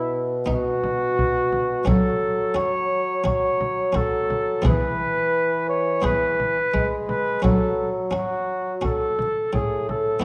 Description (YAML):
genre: classical, renaissance-style consort dance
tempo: 86 BPM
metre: 4/4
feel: straight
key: unclear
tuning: A4 = 439 Hz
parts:
  - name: mellow cornet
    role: melody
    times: 0.0-10.2 s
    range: E4 to C#5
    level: -26 LUFS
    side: equal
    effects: none
  - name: buff-stop harpsichord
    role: accompaniment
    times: 0.0-10.2 s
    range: A2 to D#5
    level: -29 LUFS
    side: equal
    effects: none
  - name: mellow bassoon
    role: bass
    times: 0.0-10.2 s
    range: A2 to G#3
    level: -28 LUFS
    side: equal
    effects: none
  - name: frame drum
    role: percussion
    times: 0.5-10.2 s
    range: none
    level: -29 LUFS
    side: equal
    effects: none
room: wet recital hall reverb, RT60 1.4 s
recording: dark, warm production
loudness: -22 LUFS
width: mono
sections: 0.0-10.2 A section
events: none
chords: 0.0 B; 1.9 F#m; 4.7 E; 7.4 F#m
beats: 0.49 1.19 | 1.88 2.58 3.27 3.96 | 4.66 5.36 6.05 6.75 | 7.44 8.14 8.84 9.53 | 10.23